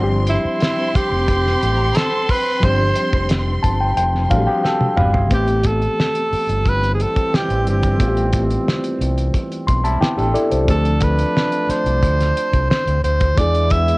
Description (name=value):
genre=lush 1970s-style soul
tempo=89 BPM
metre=4/4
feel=straight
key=A minor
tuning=A4 = 440 Hz
part: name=warm studio violin section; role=second line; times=0.0-4.9 s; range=C4 to C6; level=-25 LUFS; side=equal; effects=cassette tape
part: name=reed electric piano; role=accompaniment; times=0.0-14.0 s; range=E3 to C6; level=-22 LUFS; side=left 1 dB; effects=harmonic tremolo, cassette tape
part: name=overdriven fingered electric bass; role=bass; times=0.0-13.9 s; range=F1 to E2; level=-19 LUFS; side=equal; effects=none
part: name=breathy tenor saxophone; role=melody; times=0.3-14.0 s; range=E4 to E5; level=-20 LUFS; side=right 1 dB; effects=cassette tape
part: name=cloth-damped thuddy drum kit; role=drums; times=0.3-14.0 s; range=hi-hat, kick drum, snare drum, toms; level=-20 LUFS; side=equal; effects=cassette tape
part: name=electric guitar through a small old amp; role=riff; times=4.3-5.5, 9.8-10.7 s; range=G3 to C5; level=-28 LUFS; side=right 2 dB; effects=cassette tape
part: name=clear trombone section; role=stabs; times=6.7-14.0 s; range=E3 to E4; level=-26 LUFS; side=right 2 dB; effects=cassette tape
room=small room ambience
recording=home recording on cassette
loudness=-15 LUFS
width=side -23 dB against mid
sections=0.0-5.3 A section; 5.3-14.0 B section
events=reed electric piano fill 3.3-5.3, 9.3-10.7; drum fill 4.6-5.3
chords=0.0 G7sus4; 5.3 Am9; 10.7 Dm7; 13.4 E7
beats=0.61 1.28 1.95 | 2.62 3.30 3.97 4.64 | 5.31 5.98 6.65 7.33 | 8.00 8.67 9.34 10.01 | 10.68 11.36 12.03 12.70 | 13.37